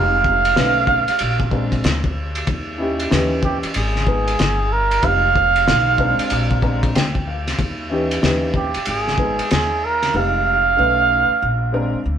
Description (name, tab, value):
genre	hip hop, jazz-hop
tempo	94 BPM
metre	4/4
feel	swing 63% on 16ths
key	Eb major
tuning	A4 = 442 Hz
part	trumpet with cup mute	melody	0.0-12.0 s	G4 to F5	-17 LUFS	right 4 dB	none
part	dark upright piano	accompaniment	0.0-12.0 s	Fb3 to Bb5	-23 LUFS	left 2 dB	none
part	upright bass	bass	0.0-12.2 s	F1 to Eb2	-23 LUFS	left 1 dB	none
part	cloth-damped thuddy drum kit	drums	0.2-10.1 s	hi-hat, kick drum, ride cymbal, snare drum	-22 LUFS	left 1 dB	none
room	moderate studio ambience, RT60 0.5 s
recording	band playing live in one room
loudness	-16 LUFS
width	side -9 dB against mid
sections	0.0-12.2 A section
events	upright piano fill 6.3-7.6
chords	0.0 Fm11; 0.6 B9; 1.2 Bb9; 2.5 Eb; 3.1 Eb7b9; 3.8 Abmadd9; 5.0 Fm11; 5.7 Bb7b9; 6.3 Bb9; 7.6 Eb; 8.2 Eb7b9; 8.9 Abmadd9; 10.1 Fm11; 10.8 B9; 11.4 Bb9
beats	0.56 1.20 1.84 | 2.48 3.12 3.75 4.39 | 5.03 5.67 6.31 6.95 | 7.58 8.22 8.86 9.50 | 10.14 10.78 11.41 12.05